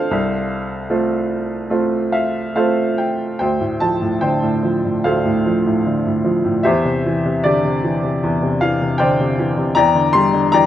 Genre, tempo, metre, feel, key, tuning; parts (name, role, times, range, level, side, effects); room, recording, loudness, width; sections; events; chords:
classical, lyrical solo piano; 75 BPM; 4/4; uneven beats, rubato; F major, D minor from 3.4 s; A4 = 441 Hz
clear upright piano; solo; 0.0-10.7 s; C2 to C6; -15 LUFS; equal
light reverb; nothing above 10.7 kHz; -15 LUFS; side -11 dB against mid
0.0-3.4 A section; 3.4-10.7 B section
upright piano fill 1.7-3.4
0.1 F/C; 3.4 Dm7; 6.7 Cadd9/E; 9.8 Em7b5